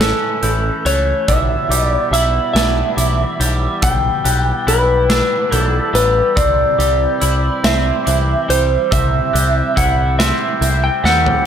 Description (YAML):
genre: post-rock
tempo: 47 BPM (dotted quarters)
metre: 6/8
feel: straight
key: unclear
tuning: A4 = 440 Hz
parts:
  - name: electric slide guitar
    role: melody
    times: 0.0-11.5 s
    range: A4 to G5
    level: -17 LUFS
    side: equal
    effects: digital delay
  - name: hand-pumped harmonium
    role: sustained chords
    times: 0.0-11.4 s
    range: E3 to E5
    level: -28 LUFS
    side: right 2 dB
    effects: none
  - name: glockenspiel with rubber mallets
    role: arpeggios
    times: 0.0-11.5 s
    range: D6 to G6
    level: -23 LUFS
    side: right 2 dB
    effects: digital delay
  - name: twelve-string electric guitar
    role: arpeggios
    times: 0.0-11.5 s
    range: A2 to E4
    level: -24 LUFS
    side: left 3 dB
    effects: lush chorus, digital delay
  - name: growling picked electric bass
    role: bass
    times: 0.0-11.3 s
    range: A1 to D#2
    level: -18 LUFS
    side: equal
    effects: overdrive
  - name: big rock drum kit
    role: drums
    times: 0.0-11.5 s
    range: hi-hat, kick drum, snare drum, toms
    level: -20 LUFS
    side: equal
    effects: none
room: light reverb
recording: none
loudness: -13 LUFS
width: side -8 dB against mid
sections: 0.0-11.5 A section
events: drum fill 11.0-11.5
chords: 0.0 A; 1.3 G6/B; 6.4 C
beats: 0.00 | 1.27 2.54 | 3.81 5.09 | 6.36 7.64 | 8.92 10.19